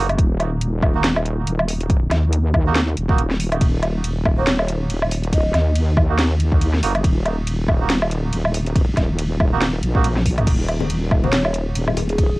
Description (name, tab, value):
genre	deep dubstep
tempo	140 BPM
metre	4/4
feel	swing 57% on 16ths, half-time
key	Eb minor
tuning	A4 = 440 Hz
part	melodica	stabs	0.0-11.4 s	Bb3 to Gb4	-27 LUFS	right 7 dB	cassette tape, dub echo
part	wobble bass	bass	0.0-12.4 s	Eb1 to Eb2	-20 LUFS	equal	chorus
part	garage drum kit	drums	0.1-12.3 s	crash cymbal, hi-hat, ride cymbal, snare drum, toms, woodblock	-23 LUFS	equal	overdrive, cassette tape
part	electronic kick drum	drums	0.2-12.3 s	none	-18 LUFS	equal	overdrive, cassette tape
part	breathy mellow ney	melody	4.4-5.8, 11.2-12.4 s	Ab4 to Eb5	-27 LUFS	equal	cassette tape, dub echo
part	congas	percussion	10.8-12.1 s	none	-27 LUFS	left 7 dB	none
room	little or no reverb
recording	home recording on cassette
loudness	-16 LUFS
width	side -21 dB against mid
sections	0.0-12.4 A section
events	drum fill 10.0-10.5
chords	0.0 Ebm